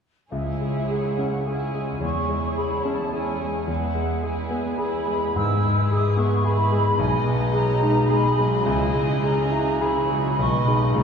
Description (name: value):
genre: classical, romantic movement for piano and orchestra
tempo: 107 BPM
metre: 3/4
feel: uneven beats, rubato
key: C# minor, G# minor from 7.0 s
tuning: A4 = 437 Hz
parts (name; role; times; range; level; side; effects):
- clear concert grand piano; melody; 0.3-11.0 s; B1 to G#4; -23 LUFS; left 1 dB; none
- muted studio violin section; second line; 0.3-11.0 s; G#4 to D#5; -32 LUFS; equal; none
- small flute group; second line; 0.3-11.0 s; E5 to E6; -27 LUFS; equal; none
- muted chamber viola section; accompaniment; 0.3-11.0 s; E3 to F#4; -32 LUFS; right 2 dB; none
- muted chamber cello section; bass; 0.3-11.0 s; C#2 to C#3; -27 LUFS; equal; none
- timpani; percussion; 5.4-6.1 s; G#2; -32 LUFS; left 1 dB; none
room: wet concert hall reverb, RT60 2.5 s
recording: minimal, uncompressed stereo recording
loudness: -20 LUFS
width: side -6 dB against mid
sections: 0.3-11.0 A section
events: none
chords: 0.3 C#m; 2.0 C#m/E; 5.4 E/G#; 7.0 G#m/B; 8.7 C#m; 10.4 G#m/B